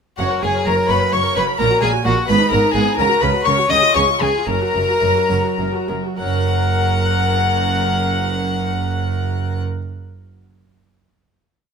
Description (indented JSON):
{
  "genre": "classical, baroque-style concerto movement with solo episodes",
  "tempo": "64-87 BPM (dotted quarters)",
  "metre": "6/8",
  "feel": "straight",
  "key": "F# major",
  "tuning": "A4 = 440 Hz",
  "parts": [
    { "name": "rich chamber violin section", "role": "melody", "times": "0.2-9.6 s", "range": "F#5 to F#6", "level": "-25 LUFS", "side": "left 4 dB", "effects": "none" },
    { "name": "warm violin", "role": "melody", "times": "0.2-9.6 s", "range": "F#4 to F#5", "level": "-20 LUFS", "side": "left 3 dB", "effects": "none" },
    { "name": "warm chamber violin section", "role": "second line", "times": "0.2-9.6 s", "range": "F#5 to D#6", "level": "-23 LUFS", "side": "left 5 dB", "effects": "none" },
    { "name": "harpsichord", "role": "accompaniment", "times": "0.2-9.9 s", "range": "F#2 to F#5", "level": "-26 LUFS", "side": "equal", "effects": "none" },
    { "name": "warm chamber viola section", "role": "accompaniment", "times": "0.2-9.6 s", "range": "B3 to C#5", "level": "-25 LUFS", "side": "right 1 dB", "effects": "none" },
    { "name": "rich chamber cello section", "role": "bass", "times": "0.2-9.6 s", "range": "F#2 to C#3", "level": "-23 LUFS", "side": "right 4 dB", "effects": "none" },
    { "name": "warm studio double bass section", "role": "bass", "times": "0.2-9.6 s", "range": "F#1 to C#2", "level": "-24 LUFS", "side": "right 4 dB", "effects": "none" }
  ],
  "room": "light reverb",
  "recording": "close, detailed microphones",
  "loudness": "-15 LUFS",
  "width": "side -6 dB against mid",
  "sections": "0.2-6.2 ritornello; 6.2-9.9 final chord",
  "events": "slowing down 2.3-6.2",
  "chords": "0.2 F#; 1.6 F#/A#; 2.3 G#m; 3.0 F#/C#; 3.7 C#; 4.5 F#"
}